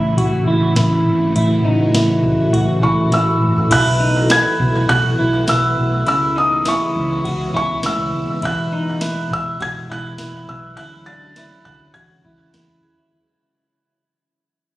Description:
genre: dream pop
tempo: 102 BPM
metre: 4/4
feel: straight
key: E major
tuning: A4 = 441 Hz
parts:
  - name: string machine, full ensemble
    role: sustained chords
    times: 0.0-13.1 s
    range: B2 to F#4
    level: -22 LUFS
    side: equal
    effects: phaser, ensemble chorus, low-pass filter
  - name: semi-hollow electric guitar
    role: arpeggios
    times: 0.0-13.1 s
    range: D4 to F#4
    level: -21 LUFS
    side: equal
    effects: lush chorus, low-pass filter, digital delay
  - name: hollow-body short-scale fingered electric bass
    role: bass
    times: 0.0-13.1 s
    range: E1 to E2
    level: -20 LUFS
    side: equal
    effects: none
  - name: soft vintage rhythm box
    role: drums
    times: 0.2-12.7 s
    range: crash cymbal, hi-hat, kick drum, ride cymbal, snare drum, tambourine, toms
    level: -24 LUFS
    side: equal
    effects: none
  - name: felt-muted upright piano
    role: melody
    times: 2.8-12.8 s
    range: C#6 to A6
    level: -19 LUFS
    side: equal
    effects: digital delay
room: light reverb, digital ambience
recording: recorded on a phone in the room, studio reverb, compression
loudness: -14 LUFS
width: side -16 dB against mid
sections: 0.0-3.7 A section; 3.7-13.1 B section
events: drum fill 3.1-3.7; fade-out 3.7-13.1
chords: 0.0 A; 3.7 B7sus4; 6.1 C#m7; 8.4 Emaj7; 10.8 Dmaj9; 12.0 E69

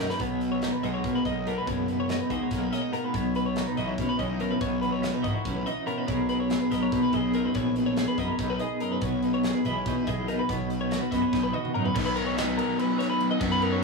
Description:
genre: math rock and midwest emo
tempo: 286 BPM (eighths)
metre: 7/8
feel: straight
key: B major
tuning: A4 = 441 Hz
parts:
  - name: twelve-string electric guitar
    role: accompaniment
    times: 0.0-12.0 s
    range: F#2 to B4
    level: -27 LUFS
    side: right 1 dB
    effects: tremolo
  - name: twelve-string electric guitar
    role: arpeggios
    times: 0.0-13.8 s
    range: A#4 to D#5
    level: -32 LUFS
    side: left 2 dB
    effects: none
  - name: fuzz picked electric bass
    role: bass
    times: 0.0-13.8 s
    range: F#1 to B2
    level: -31 LUFS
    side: left 2 dB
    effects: overdrive
  - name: modern studio drum kit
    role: drums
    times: 0.1-13.7 s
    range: crash cymbal, hi-hat, kick drum, ride cymbal, snare drum, toms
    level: -34 LUFS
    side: equal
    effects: none
  - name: overdriven electric guitar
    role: riff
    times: 11.9-13.8 s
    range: B2 to D#4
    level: -26 LUFS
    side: left 1 dB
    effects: none
room: light reverb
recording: rough rehearsal-room recording, warm saturation, studio ambience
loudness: -24 LUFS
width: side -3 dB against mid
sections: 0.2-11.9 A section; 11.9-13.8 B section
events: drum fill 0.0, 11.3-11.9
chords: 0.2 G#m9/B; 3.1 C#m11/B; 6.1 Bmaj13; 9.0 Emaj7/B; 10.5 B; 11.9 Bmaj7

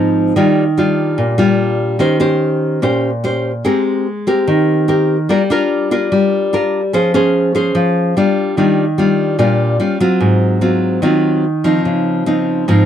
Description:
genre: bossa nova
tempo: 146 BPM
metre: 4/4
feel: straight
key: Eb major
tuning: A4 = 439 Hz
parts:
  - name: nylon-string guitar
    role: solo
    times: 0.0-12.9 s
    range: Ab2 to C5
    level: -12 LUFS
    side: equal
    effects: none
room: moderate booth ambience, RT60 0.2 s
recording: dry, close 1970s-style studio recording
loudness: -12 LUFS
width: side -9 dB against mid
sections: 0.0-8.6 A section; 8.6-12.9 B section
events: none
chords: 0.4 Ebmaj9; 2.0 Eb6; 3.6 Abmaj9; 5.3 Gm7; 6.9 Dbmaj7/F; 8.2 Dmadd11/G; 8.6 Ebmaj9; 9.8 Dbmaj7#11; 10.2 Ab6; 11.9 Dbmaj9

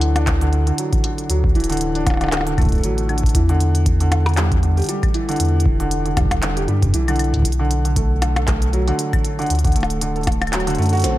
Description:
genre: IDM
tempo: 117 BPM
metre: 4/4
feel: swing 56% on 16ths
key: E minor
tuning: A4 = 442 Hz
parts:
  - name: felt-muted upright piano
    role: arpeggios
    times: 0.0-11.2 s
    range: D3 to A4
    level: -22 LUFS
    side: right 1 dB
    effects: vintage 12-bit sampler grit, ping-pong delay
  - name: warm sub bass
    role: bass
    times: 0.0-11.2 s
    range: D1 to G2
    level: -19 LUFS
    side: equal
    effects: none
  - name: glitchy drum kit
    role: drums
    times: 0.0-11.2 s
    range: claves, handclaps, hi-hat, percussion blips, snare drum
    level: -25 LUFS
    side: left 2 dB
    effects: none
  - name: electronic kick drum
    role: drums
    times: 0.3-10.4 s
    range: none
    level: -19 LUFS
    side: equal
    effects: none
room: little or no reverb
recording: none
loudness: -16 LUFS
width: side -15 dB against mid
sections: 0.0-11.2 A section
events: kick drops out 10.5-11.2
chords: 0.0 Dadd9; 3.3 Em7; 7.5 Bm7; 9.5 D

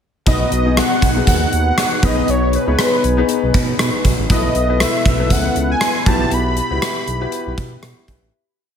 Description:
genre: 1980s-style pop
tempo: 119 BPM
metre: 4/4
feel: swing 55% on 16ths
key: unclear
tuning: A4 = 441 Hz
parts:
  - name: wide unison lead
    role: melody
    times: 0.3-8.1 s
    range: B4 to B5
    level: -21 LUFS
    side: right 1 dB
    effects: ping-pong delay
  - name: warm concert grand piano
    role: accompaniment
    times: 0.3-8.4 s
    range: B2 to C#5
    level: -21 LUFS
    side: left 6 dB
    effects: wide subtle chorus
  - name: analog synth brass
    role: stabs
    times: 0.3-8.3 s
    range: B3 to B4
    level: -26 LUFS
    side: right 3 dB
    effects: chorus
  - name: smooth synth bass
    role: bass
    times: 0.3-8.3 s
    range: A1 to B2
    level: -20 LUFS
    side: right 1 dB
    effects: none
  - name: gated 80s drum kit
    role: drums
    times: 0.3-8.2 s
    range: hi-hat, kick drum, rim click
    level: -17 LUFS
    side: equal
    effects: none
room: moderate plate reverb, RT60 1.4 s, studio reverb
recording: dreamy mix soaked in reverb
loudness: -14 LUFS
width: side -8 dB against mid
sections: 0.3-8.3 verse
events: fade-out 6.3-8.3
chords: 0.3 B; 2.0 G#m/B; 4.3 Asus2/B; 6.1 Emadd9/B

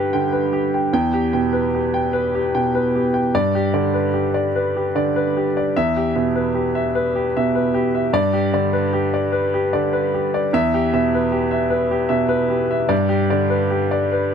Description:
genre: neoclassical minimalist piano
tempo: 50 BPM (dotted quarters)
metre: 6/8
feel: rubato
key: unclear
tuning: A4 = 440 Hz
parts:
  - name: clear baby grand piano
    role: solo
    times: 0.0-14.3 s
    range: E2 to G5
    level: -17 LUFS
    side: equal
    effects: none
room: little or no reverb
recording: close, detailed microphones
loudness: -17 LUFS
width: side -7 dB against mid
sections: 0.0-14.3 A section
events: none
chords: 0.0 G; 0.9 Em; 3.3 G; 5.7 Em; 8.1 G; 10.5 Em; 12.9 G

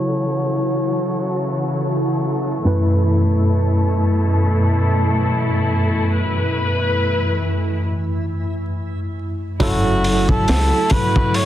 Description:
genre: trip hop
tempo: free time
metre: none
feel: none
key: F# minor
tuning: A4 = 438 Hz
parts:
  - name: trumpet with cup mute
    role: melody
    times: 0.0-2.2, 9.6-11.5 s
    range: F#4 to C#5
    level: -25 LUFS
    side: equal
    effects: tape echo
  - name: bright tine electric piano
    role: accompaniment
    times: 0.0-11.5 s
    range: F#2 to B4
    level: -20 LUFS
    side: equal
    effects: medium stereo tremolo, tape echo
  - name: muted studio string section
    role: sustained chords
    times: 0.0-11.5 s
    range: F#2 to B4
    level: -21 LUFS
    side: equal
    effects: none
  - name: backwards swelling texture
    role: texture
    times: 0.0-7.9 s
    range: E3 to E4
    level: -26 LUFS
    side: left 1 dB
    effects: built-in reverb
  - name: upright bass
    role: bass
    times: 9.6-10.7 s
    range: F#1 to C#2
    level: -20 LUFS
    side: equal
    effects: none
  - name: crunchy breakbeat drum kit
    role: drums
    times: 9.6-11.5 s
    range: hi-hat, kick drum, snare drum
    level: -18 LUFS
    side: equal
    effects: none
room: small room reverb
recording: dense, heavily limited modern master, vinyl crackle, low-pass filter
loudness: -16 LUFS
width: side -12 dB against mid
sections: 0.0-9.6 A section; 9.6-11.5 B section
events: filter sweep 0.0-9.6; break 7.9-9.6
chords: 0.0 F#m7; 2.7 Asus2/F#; 9.6 F#m7

